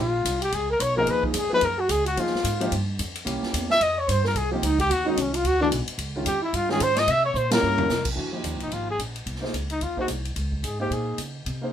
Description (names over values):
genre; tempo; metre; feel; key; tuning
jazz, small-group swing and bop; 220 BPM; 4/4; swing 60% on 8ths; F minor; A4 = 440 Hz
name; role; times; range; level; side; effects
breathy trumpet; melody; 0.0-11.2 s; C4 to E5; -24 LUFS; left 2 dB; none
breathy alto saxophone; second line; 0.0-8.1 s; C4 to E5; -28 LUFS; right 3 dB; none
upright bass; bass; 0.0-11.7 s; Ab1 to Db3; -29 LUFS; equal; none
swinging big-band drum kit; drums; 0.3-11.5 s; crash cymbal, hi-hat, kick drum, ride cymbal, snare drum, toms; -31 LUFS; equal; none
warm upright piano; accompaniment; 1.0-11.7 s; Eb3 to C5; -29 LUFS; right 1 dB; none
room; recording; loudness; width
light reverb; band playing live in one room; -22 LUFS; side -9 dB against mid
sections
0.0-8.2 A section; 8.2-11.7 B section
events
drum fill 7.3-7.9; band accent 7.5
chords
0.0 Db6 (rootless); 0.5 Db13; 1.6 Gbmaj7; 2.7 Fsus2; 3.3 C7b9; 3.8 Fsus2; 4.9 Ebm7; 5.4 D; 6.0 Db; 7.1 C7b9; 8.2 Fm7; 9.3 Ab; 10.4 Db5